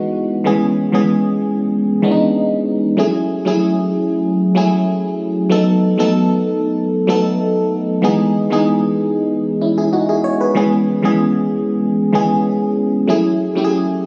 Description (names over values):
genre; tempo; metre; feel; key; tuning
afrobeats; 95 BPM; 4/4; straight; F# dorian; A4 = 438 Hz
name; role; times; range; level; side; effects
FM electric piano; solo; 0.0-14.1 s; E3 to C#5; -16 LUFS; equal; chorus, phaser
room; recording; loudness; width
light reverb; recorded on a phone in the room, studio reverb, compression; -16 LUFS; mono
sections
0.0-14.1 A section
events
none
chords
0.5 C#m7; 3.0 F#m9; 5.5 B7; 8.0 Emaj7; 10.6 C#m7; 13.1 F#m9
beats
| 0.46 1.09 1.72 2.35 | 2.98 3.61 4.25 4.88 | 5.51 6.14 6.77 7.40 | 8.03 8.67 9.30 9.93 | 10.56 11.19 11.82 12.46 | 13.09 13.72